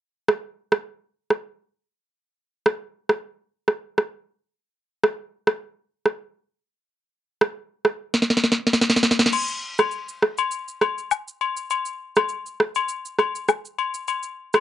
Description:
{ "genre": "afrobeats", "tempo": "101 BPM", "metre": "4/4", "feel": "swing 55% on 16ths", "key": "none", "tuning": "none", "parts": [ { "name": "afro-pop drum kit", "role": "drums", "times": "0.3-14.6 s", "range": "crash cymbal, rim click, shaker, snare drum", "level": "-19 LUFS", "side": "right 1 dB", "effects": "none" }, { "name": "agogo bells and woodblock", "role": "percussion", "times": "9.3-14.6 s", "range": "none", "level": "-24 LUFS", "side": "left 8 dB", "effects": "none" } ], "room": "moderate small room reverb, RT60 0.5 s", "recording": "home recording on cassette, nothing above 11.0 kHz", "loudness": "-22 LUFS", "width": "side -12 dB against mid", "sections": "0.0-9.3 A section; 9.3-14.6 B section", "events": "drum fill 8.1-9.3; kick muted 9.3-14.6", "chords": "none" }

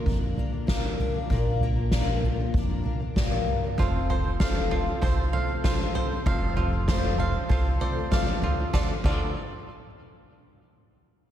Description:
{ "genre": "indie folk with a building arrangement", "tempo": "97 BPM", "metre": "4/4", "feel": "straight", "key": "D minor", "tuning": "A4 = 440 Hz", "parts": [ { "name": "fingerpicked steel-string acoustic guitar", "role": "accompaniment", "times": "0.0-3.8 s", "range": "G2 to F4", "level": "-33 LUFS", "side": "left 2 dB", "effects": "ensemble chorus" }, { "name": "picked twelve-string acoustic guitar", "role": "accompaniment", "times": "0.0-9.3 s", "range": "Bb2 to Bb4", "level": "-33 LUFS", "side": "left 6 dB", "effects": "analog chorus" }, { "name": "upright bass", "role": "bass", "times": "0.1-9.3 s", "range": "F1 to F2", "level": "-29 LUFS", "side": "equal", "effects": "none" }, { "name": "soft-mallet drum kit", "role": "drums", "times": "0.1-9.2 s", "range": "crash cymbal, kick drum, snare drum, toms", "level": "-26 LUFS", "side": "equal", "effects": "none" }, { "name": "bright baby grand piano", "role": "accompaniment", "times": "3.8-9.3 s", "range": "F1 to D5", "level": "-34 LUFS", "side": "right 4 dB", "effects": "none" }, { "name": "bluegrass banjo", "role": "arpeggios", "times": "3.8-9.3 s", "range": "F4 to F5", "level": "-33 LUFS", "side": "right 2 dB", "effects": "ping-pong delay" } ], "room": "moderate lush hall reverb, RT60 2.5 s", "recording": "dreamy mix soaked in reverb", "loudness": "-23 LUFS", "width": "side -11 dB against mid", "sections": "0.0-8.7 A section; 8.7-11.2 B section", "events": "none", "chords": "0.0 Bb; 3.8 F; 8.7 Dm" }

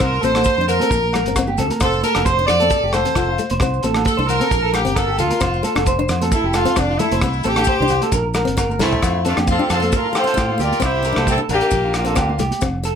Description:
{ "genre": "highlife guitar band", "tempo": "133 BPM", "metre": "4/4", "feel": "swing 54% on 16ths", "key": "F major", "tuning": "A4 = 440 Hz", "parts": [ { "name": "warm horn section", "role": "melody", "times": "0.0-12.4 s", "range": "C4 to D5", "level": "-20 LUFS", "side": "left 1 dB", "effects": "none" }, { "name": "picked plugged-in steel-string acoustic guitar", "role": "accompaniment", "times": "0.0-12.9 s", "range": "A3 to F4", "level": "-26 LUFS", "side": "left 4 dB", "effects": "none" }, { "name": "electric guitar at the edge of break-up", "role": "arpeggios", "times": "0.0-13.0 s", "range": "E4 to C5", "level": "-22 LUFS", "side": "right 2 dB", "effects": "wide subtle chorus, slapback echo" }, { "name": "fingered electric bass", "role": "bass", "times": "0.0-12.9 s", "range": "F1 to A2", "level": "-23 LUFS", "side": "equal", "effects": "none" }, { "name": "warm soul drum kit", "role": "drums", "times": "0.0-13.0 s", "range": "hi-hat, kick drum, rim click, snare drum, toms", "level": "-23 LUFS", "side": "equal", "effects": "none" }, { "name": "agogo bells", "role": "percussion", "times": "0.0-12.7 s", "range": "none", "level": "-30 LUFS", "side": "left 6 dB", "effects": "none" }, { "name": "congas", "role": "percussion", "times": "0.2-12.6 s", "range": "none", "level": "-27 LUFS", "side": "right 3 dB", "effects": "none" }, { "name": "maracas", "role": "percussion", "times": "0.2-13.0 s", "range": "none", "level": "-33 LUFS", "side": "left 8 dB", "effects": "none" }, { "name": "edgy tenor saxophone", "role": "second line", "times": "8.8-12.4 s", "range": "A3 to F4", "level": "-27 LUFS", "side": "left 3 dB", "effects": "none" } ], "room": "moderate small room reverb, RT60 0.5 s", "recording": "none", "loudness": "-15 LUFS", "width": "side -7 dB against mid", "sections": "0.0-9.0 A section; 9.0-13.0 B section", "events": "horn section solo 0.0-9.0; drum fill 8.8", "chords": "0.0 Bbmaj9/A; 0.9 Bbadd9; 1.8 F; 3.6 Amadd11; 4.5 Bbadd9; 5.4 F; 7.2 C5; 8.1 Bbsus2; 9.0 F; 10.8 C; 11.7 Bbadd9" }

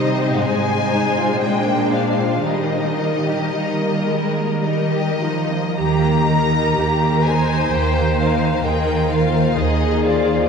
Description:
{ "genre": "classical, slow romantic movement for string orchestra", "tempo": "48-66 BPM", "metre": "3/4", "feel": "rubato", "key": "Eb major", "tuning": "A4 = 440 Hz", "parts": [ { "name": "warm symphonic violin section", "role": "melody", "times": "0.0-10.5 s", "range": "D5 to Bb5", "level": "-23 LUFS", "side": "left 4 dB", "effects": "none" }, { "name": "rich symphonic violin section", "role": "second line", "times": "0.0-10.5 s", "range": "G3 to C5", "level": "-23 LUFS", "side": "left 2 dB", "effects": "none" }, { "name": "rich studio viola section", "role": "accompaniment", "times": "0.0-10.5 s", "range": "F3 to C5", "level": "-22 LUFS", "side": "equal", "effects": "none" }, { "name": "rich symphonic cello section", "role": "bass", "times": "0.0-10.4 s", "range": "Ab2 to Eb3", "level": "-22 LUFS", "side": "right 2 dB", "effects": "none" }, { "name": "rich symphonic double bass section", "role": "bass", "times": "5.8-10.4 s", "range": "Eb2", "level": "-22 LUFS", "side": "right 2 dB", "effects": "none" } ], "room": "wet cathedral reverb, RT60 5.5 s", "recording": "dark, warm production", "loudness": "-16 LUFS", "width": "side -6 dB against mid", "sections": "0.0-5.8 A section; 5.8-10.5 B section", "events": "none", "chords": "0.4 Fm7/Ab; 1.4 Bb7; 2.5 Eb; 8.6 Fm7/Eb" }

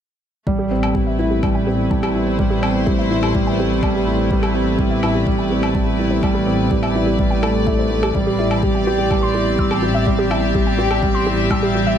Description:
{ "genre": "piano and strings electronica", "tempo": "125 BPM", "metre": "4/4", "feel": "straight", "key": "A minor", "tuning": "A4 = 438 Hz", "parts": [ { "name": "rich studio string section", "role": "sustained chords", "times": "0.5-12.0 s", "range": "A3 to E5", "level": "-24 LUFS", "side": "left 2 dB", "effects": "sidechain pumping" }, { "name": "felt-muted upright piano", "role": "riff", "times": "0.5-12.0 s", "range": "G3 to G4", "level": "-18 LUFS", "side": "right 2 dB", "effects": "ping-pong delay" }, { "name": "dark detuned saw bass", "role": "bass", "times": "0.5-12.0 s", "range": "A1", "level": "-24 LUFS", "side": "left 1 dB", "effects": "sidechain pumping" }, { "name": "electronic kick drum", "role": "drums", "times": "0.5-11.6 s", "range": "none", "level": "-22 LUFS", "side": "left 1 dB", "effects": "none" }, { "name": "warbly dusty pluck", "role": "arpeggios", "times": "0.6-11.9 s", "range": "G4 to E6", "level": "-26 LUFS", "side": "right 1 dB", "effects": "chorus, cassette tape, sidechain pumping, ping-pong delay" }, { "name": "woodblock", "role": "drums", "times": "0.8-11.6 s", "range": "none", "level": "-27 LUFS", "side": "left 3 dB", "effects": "none" } ], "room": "moderate scoring stage reverb, RT60 1.9 s", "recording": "none", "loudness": "-15 LUFS", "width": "side -9 dB against mid", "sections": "0.5-12.0 A section", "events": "filter sweep on synth arpeggio sound 0.5-12.0", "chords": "0.5 Am7" }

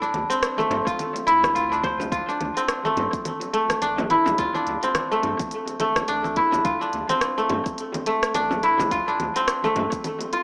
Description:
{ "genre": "organic downtempo", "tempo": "106 BPM", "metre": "4/4", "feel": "swing 58% on 16ths", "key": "D minor", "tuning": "A4 = 440 Hz", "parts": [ { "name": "kora", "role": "arpeggios", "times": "0.0-10.4 s", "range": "A3 to C5", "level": "-24 LUFS", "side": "equal", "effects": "analog delay" }, { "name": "afro-pop drum kit", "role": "drums", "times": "0.0-10.4 s", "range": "cabasa, congas, hi-hat, rim click", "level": "-32 LUFS", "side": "equal", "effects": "studio reverb, analog delay" }, { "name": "warm sub bass", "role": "bass", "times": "0.1-9.9 s", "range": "A1 to G2", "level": "-40 LUFS", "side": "equal", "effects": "none" }, { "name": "frame drum", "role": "percussion", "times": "0.7-9.9 s", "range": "none", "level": "-36 LUFS", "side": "equal", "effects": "none" }, { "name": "electronic kick drum", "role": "drums", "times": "0.9-10.0 s", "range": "none", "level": "-34 LUFS", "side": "equal", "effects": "studio reverb" } ], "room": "moderate plate reverb, RT60 1.9 s", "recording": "echo-heavy mix, small speaker sound", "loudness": "-23 LUFS", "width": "mono", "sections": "0.0-10.4 A section", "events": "none", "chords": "0.0 Dm" }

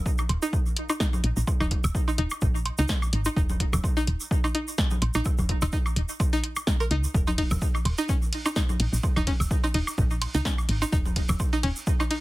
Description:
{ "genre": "minimal techno", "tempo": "127 BPM", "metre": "4/4", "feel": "swing 55% on 16ths", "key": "unclear", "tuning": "A4 = 436 Hz", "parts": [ { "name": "electronic kick drum", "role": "drums", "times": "0.1-12.0 s", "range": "none", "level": "-26 LUFS", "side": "equal", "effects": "none" }, { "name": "tube shaker", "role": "percussion", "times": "0.1-12.1 s", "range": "none", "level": "-38 LUFS", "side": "right 2 dB", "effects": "none" }, { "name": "woodblock, cowbell and congas", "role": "percussion", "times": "0.2-12.1 s", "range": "none", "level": "-34 LUFS", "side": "right 1 dB", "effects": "overdrive, digital delay" }, { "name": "woody FM bass", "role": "bass", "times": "0.3-11.7 s", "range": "Eb1 to Db2", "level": "-26 LUFS", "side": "equal", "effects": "tube saturation, sidechain pumping" }, { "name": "punchy analog drum machine", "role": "drums", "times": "0.3-12.2 s", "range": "hi-hat, ride cymbal, snare drum", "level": "-31 LUFS", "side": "equal", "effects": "none" }, { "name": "string-like resonator pluck", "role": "riff", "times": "0.4-12.2 s", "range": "Db4 to Bb4", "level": "-31 LUFS", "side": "equal", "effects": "chorus, cassette tape, sidechain pumping, dub echo" } ], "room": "light reverb", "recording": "heavily compressed radio sound, multiband compression", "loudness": "-23 LUFS", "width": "side -18 dB against mid", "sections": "0.0-12.2 A section", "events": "none", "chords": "0.0 Eb5" }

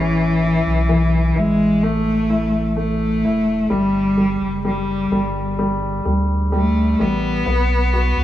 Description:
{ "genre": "pop", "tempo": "64 BPM", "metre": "4/4", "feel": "straight", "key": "A major", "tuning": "A4 = 439 Hz", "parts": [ { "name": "rich cello", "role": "melody", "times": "0.0-8.2 s", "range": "E3 to B3", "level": "-19 LUFS", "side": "left 1 dB", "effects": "none" }, { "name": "clear baby grand piano", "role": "accompaniment", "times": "0.0-8.2 s", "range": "E3 to F#4", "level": "-22 LUFS", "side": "left 1 dB", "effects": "none" }, { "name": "warm sub bass", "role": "bass", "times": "0.0-8.2 s", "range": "E1 to D2", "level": "-21 LUFS", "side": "equal", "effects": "none" } ], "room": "studio reverb", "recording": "none", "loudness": "-16 LUFS", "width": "side -13 dB against mid", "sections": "0.0-8.2 A section", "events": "none", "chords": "0.0 A; 3.7 G5; 7.5 B5" }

